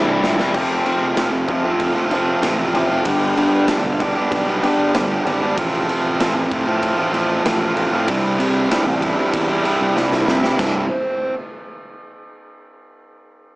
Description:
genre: quiet-loud alternative rock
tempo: 96 BPM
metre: 4/4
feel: straight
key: C major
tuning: A4 = 440 Hz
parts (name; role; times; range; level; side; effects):
- fuzz guitar; riff; 0.0-11.3 s; C2 to G4; -18 LUFS; right 1 dB; distortion
- thick fuzz guitar; riff; 0.0-1.0 s; C2 to E4; -23 LUFS; left 3 dB; distortion
- fuzz fingered electric bass; bass; 0.0-10.9 s; C1 to C3; -25 LUFS; equal; overdrive
- raw garage drum kit; drums; 0.2-10.7 s; crash cymbal, kick drum, ride cymbal, snare drum; -23 LUFS; equal; none
- electric guitar through a small old amp; arpeggios; 0.5-5.5 s; F2 to G3; -22 LUFS; left 1 dB; none
room: light reverb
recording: small speaker sound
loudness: -16 LUFS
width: side -22 dB against mid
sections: 0.5-10.6 A section; 10.6-13.1 B section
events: drum fill 0.0-0.5, 10.0-10.6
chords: 0.0 C; 0.5 F; 3.1 G; 5.6 F/A; 8.1 C; 10.6 C5

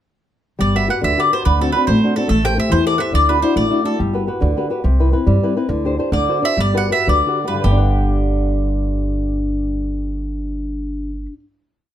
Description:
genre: italian folk, Italian serenade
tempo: 97-144 BPM (dotted quarters)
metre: 6/8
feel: straight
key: G major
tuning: A4 = 440 Hz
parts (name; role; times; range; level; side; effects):
- mandolin; melody; 0.6-4.0, 6.1-11.3 s; G4 to G5; -19 LUFS; equal; none
- flamenco guitar; accompaniment; 0.6-11.4 s; G2 to F#5; -19 LUFS; left 1 dB; none
- upright bass; bass; 0.6-11.3 s; G1 to G2; -19 LUFS; right 1 dB; none
room: light reverb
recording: close, detailed microphones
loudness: -15 LUFS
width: side -11 dB against mid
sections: 0.6-7.6 A section; 7.6-10.1 final chord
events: slowing down 5.7-7.6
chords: 0.6 Gmaj7; 1.5 D7; 2.3 Am7; 3.1 Dadd9; 4.0 Gmaj7; 4.8 Cmaj7; 5.7 D7sus4; 6.1 D7; 6.6 Gmaj7

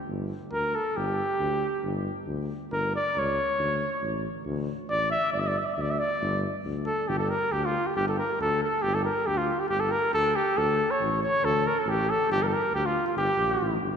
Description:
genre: balkan folk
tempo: 138 BPM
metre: 2/4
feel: straight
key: G dorian sharp4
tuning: A4 = 439 Hz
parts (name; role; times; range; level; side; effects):
- dark tuba; bass; 0.1-14.0 s; G1 to D2; -31 LUFS; left 1 dB; none
- mellow trumpet; melody; 0.5-13.8 s; F4 to E5; -26 LUFS; equal; none
room: wet church reverb, RT60 2.9 s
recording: recorded in a church or concert hall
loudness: -24 LUFS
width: side -7 dB against mid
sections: 0.1-7.1 A section; 7.1-14.0 B section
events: trumpet solo 0.1-7.1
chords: 0.1 G5; 3.6 D5; 5.3 G5; 10.6 D5; 12.3 Gm

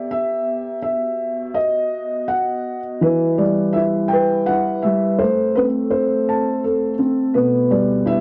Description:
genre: children's music, lullaby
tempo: 83 BPM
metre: 3/4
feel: rubato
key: E minor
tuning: A4 = 442 Hz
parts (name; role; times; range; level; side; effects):
- felt-muted upright piano; melody; 0.0-8.2 s; B2 to A5; -20 LUFS; equal; cassette tape
- glass harmonica; sustained chords; 0.0-8.2 s; G3 to E5; -29 LUFS; equal; cassette tape
room: light reverb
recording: home recording on cassette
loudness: -19 LUFS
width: mono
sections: 0.0-8.2 A section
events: none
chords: 0.0 Em; 0.8 Bsus4; 1.5 B; 3.0 Em; 5.2 Am; 7.3 Em/B

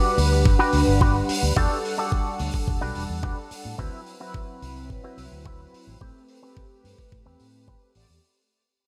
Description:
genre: nu-disco, nu disco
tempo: 108 BPM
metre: 4/4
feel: straight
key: unclear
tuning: A4 = 440 Hz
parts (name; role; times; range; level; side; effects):
- mellow synth brass; accompaniment; 0.0-8.1 s; F#3 to F#5; -30 LUFS; equal; chorus, phaser, sidechain pumping, delay
- electric guitar with an envelope filter; riff; 0.0-8.0 s; C4 to D5; -30 LUFS; equal; analog chorus, low-pass filter, delay
- fingered electric bass with an envelope filter; bass; 0.2-8.2 s; E1 to A2; -27 LUFS; equal; none
- hi-hat; drums; 0.2-8.1 s; none; -36 LUFS; equal; none
- electronic kick drum; drums; 0.5-7.8 s; none; -25 LUFS; equal; none
room: moderate lush hall reverb, RT60 1.9 s, small room ambience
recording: bright 1980s-style digital production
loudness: -22 LUFS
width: mono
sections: 0.0-8.2 A section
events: fade-out 0.0-8.2; filter sweep on clean electric guitar 0.0-8.2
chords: 0.0 Gmaj7; 1.6 Em11; 3.8 D13; 6.0 Am9

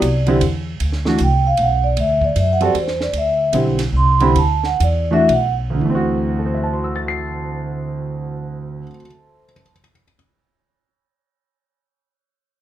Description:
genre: modal jazz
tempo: 108-154 BPM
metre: 3/4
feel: swing 64% on 8ths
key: D mixolydian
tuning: A4 = 438 Hz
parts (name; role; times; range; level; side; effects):
- vibraphone with soft mallets; melody; 0.0-5.5 s; C5 to C6; -18 LUFS; right 1 dB; none
- upright bass; bass; 0.0-8.9 s; B1 to F#2; -20 LUFS; equal; none
- compact cocktail drum kit; drums; 0.0-5.4 s; hi-hat, kick drum, ride cymbal, snare drum; -30 LUFS; right 3 dB; none
- warm concert grand piano; accompaniment; 0.3-10.1 s; D2 to C7; -20 LUFS; right 1 dB; none
room: light reverb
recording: minimal, uncompressed stereo recording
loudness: -15 LUFS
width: side -12 dB against mid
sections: 0.8-5.8 A section; 5.8-9.2 B section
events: vibraphone solo 0.8-5.8; slowing down 3.1-5.8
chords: 0.0 D7sus2; 0.8 D13; 5.8 D9

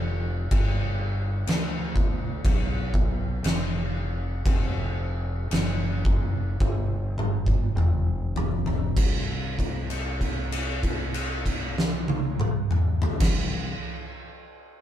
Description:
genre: stoner and doom metal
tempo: 48-63 BPM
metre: 4/4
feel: straight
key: unclear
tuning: A4 = 439 Hz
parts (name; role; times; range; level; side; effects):
- growling fingered electric bass; bass; 0.0-13.7 s; F1 to D2; -29 LUFS; equal; overdrive
- oversized low-tuned drum kit; drums; 0.5-13.5 s; crash cymbal, kick drum, snare drum, toms; -25 LUFS; equal; none
room: little or no reverb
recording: band playing live in one room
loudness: -24 LUFS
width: side -11 dB against mid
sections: 0.0-9.0 A section; 9.0-14.0 B section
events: slowing down 0.5-9.0; drum fill 6.6-9.0; held note 9.0-13.2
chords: none

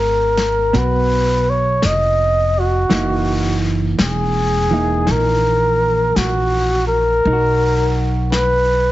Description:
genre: jazz ballad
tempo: 55 BPM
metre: 4/4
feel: swing 66% on 8ths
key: unclear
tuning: A4 = 441 Hz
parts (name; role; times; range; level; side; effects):
- trumpet with bucket mute; melody; 0.0-8.9 s; F#4 to D#5; -17 LUFS; equal; plate reverb
- hollow-body jazz guitar; accompaniment; 0.0-8.9 s; E3 to F#4; -23 LUFS; right 4 dB; none
- upright bass; bass; 0.0-8.9 s; E1 to B1; -19 LUFS; equal; none
- vintage brush drum kit; drums; 0.4-8.9 s; brushed snare drum, hi-hat, snare drum; -26 LUFS; left 3 dB; none
room: light reverb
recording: heavily compressed radio sound, multiband compression, nothing above 7.8 kHz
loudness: -14 LUFS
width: side -15 dB against mid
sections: 0.0-8.9 A section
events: none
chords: 0.0 G#m9; 2.9 F#13; 7.2 Bmaj7

